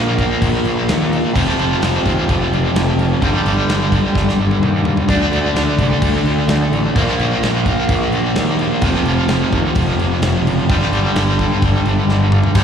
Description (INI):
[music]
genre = hard rock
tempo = 128 BPM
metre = 4/4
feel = straight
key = G minor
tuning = A4 = 440 Hz
[part]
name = biting overdriven guitar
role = riff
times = 0.0-12.6 s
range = F2 to D4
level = -16 LUFS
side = equal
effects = harmonic tremolo, slapback echo
[part]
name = fuzz picked electric bass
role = bass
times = 0.0-12.6 s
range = F1 to Eb2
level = -19 LUFS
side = equal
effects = overdrive
[part]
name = big rock drum kit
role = drums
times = 0.2-12.6 s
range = crash cymbal, kick drum, snare drum, toms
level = -21 LUFS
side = equal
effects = none
[sound]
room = studio ambience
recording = live gig heard through the venue's PA, recital hall reverb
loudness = -13 LUFS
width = side -8 dB against mid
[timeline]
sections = 0.0-12.6 A section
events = drum fill 4.1-5.1, 12.1-12.6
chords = 0.0 Bb5; 1.3 F5; 3.2 G5; 5.1 D5; 7.0 Bb5; 8.8 F5; 10.7 G5